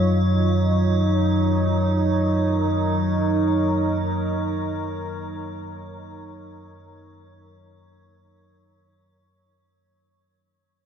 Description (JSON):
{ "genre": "dark ambient drone", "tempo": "free time", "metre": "none", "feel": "none", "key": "unclear", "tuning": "A4 = 440 Hz", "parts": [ { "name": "deep dark ambient pad", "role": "sustained chords", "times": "0.0-9.7 s", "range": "D#4 to C#5", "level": "-25 LUFS", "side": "right 3 dB", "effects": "chorus, built-in reverb" }, { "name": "deep rumbling drone", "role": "drone", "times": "0.0-9.9 s", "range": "F#2 to F#3", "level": "-22 LUFS", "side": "left 1 dB", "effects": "built-in reverb" }, { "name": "metallic inharmonic drone", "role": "texture", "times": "0.0-9.8 s", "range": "C#5", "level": "-31 LUFS", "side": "right 2 dB", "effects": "chorus, built-in reverb" } ], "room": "wet huge ambient reverb, RT60 7.8 s", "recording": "dark, warm production", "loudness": "-19 LUFS", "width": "side -8 dB against mid", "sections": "0.0-9.7 A section", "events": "fade-out 0.0-9.7", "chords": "0.0 A#m" }